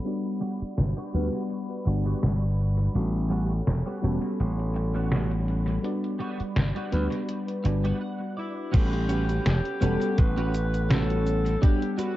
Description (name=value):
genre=vaporwave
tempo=83 BPM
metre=4/4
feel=swing 54% on 16ths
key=unclear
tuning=A4 = 441 Hz
part: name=mellow FM electric piano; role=accompaniment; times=0.0-12.2 s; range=G3 to F#5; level=-31 LUFS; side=left 1 dB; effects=analog chorus, analog delay
part: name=warbly tape-like pad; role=sustained chords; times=0.0-12.2 s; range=G3 to B5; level=-41 LUFS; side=equal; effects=chorus, built-in reverb, phaser
part: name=detuned 8-bit digital drum machine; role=drums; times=0.1-12.1 s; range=cabasa, crash cymbal, hi-hat, snare drum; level=-29 LUFS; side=equal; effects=vintage 12-bit sampler grit, analog delay
part: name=twelve-string electric guitar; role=riff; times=0.4-12.2 s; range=G3 to F#5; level=-36 LUFS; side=right 3 dB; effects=ensemble chorus, vintage 12-bit sampler grit, low-pass filter, analog delay
part: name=slap bass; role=bass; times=0.6-11.6 s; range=E1 to D2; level=-25 LUFS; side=equal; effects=none
part: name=warm alto saxophone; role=melody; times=8.4-12.2 s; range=E4 to B4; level=-32 LUFS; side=equal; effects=vintage 12-bit sampler grit, analog delay
part: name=electronic kick drum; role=drums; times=8.7-11.8 s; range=none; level=-21 LUFS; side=equal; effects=vintage 12-bit sampler grit
room=light reverb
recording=echo-heavy mix, cassette tape, low-pass filter, nothing above 7.8 kHz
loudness=-24 LUFS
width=side -15 dB against mid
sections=0.0-8.7 A section; 8.7-12.2 B section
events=filter sweep on clean electric guitar 0.0-8.7; filter sweep 0.0-8.7; clean electric guitar fill 7.7-8.7; stop 8.0-8.7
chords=0.1 Gmaj7; 3.0 A13; 5.8 Gmaj7; 8.7 A13; 11.6 Gmaj7